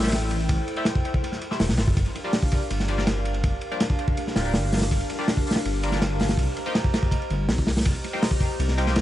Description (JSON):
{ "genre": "drum and bass, jungle", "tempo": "163 BPM", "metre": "4/4", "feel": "straight", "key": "G minor", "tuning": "A4 = 437 Hz", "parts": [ { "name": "warbly tape-like pad", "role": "sustained chords", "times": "0.0-9.0 s", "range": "D4 to Bb5", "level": "-32 LUFS", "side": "equal", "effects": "chorus, built-in reverb" }, { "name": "band-passed chord stab", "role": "stabs", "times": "0.0-9.0 s", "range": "F3 to G4", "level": "-32 LUFS", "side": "left 2 dB", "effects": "chorus, phaser, dub echo" }, { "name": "dark detuned saw bass", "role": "bass", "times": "0.0-9.0 s", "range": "D1 to C2", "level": "-26 LUFS", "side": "equal", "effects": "none" }, { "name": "crunchy breakbeat drum kit", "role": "drums", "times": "0.0-9.0 s", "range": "hi-hat, kick drum, ride cymbal, snare drum", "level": "-24 LUFS", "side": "equal", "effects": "dub echo" } ], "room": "small room ambience", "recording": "echo-heavy mix, vinyl crackle, nothing above 11.0 kHz", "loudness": "-22 LUFS", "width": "side -14 dB against mid", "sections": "0.0-9.0 A section", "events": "none", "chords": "0.0 Am7; 2.0 Gm7; 6.4 Cm7" }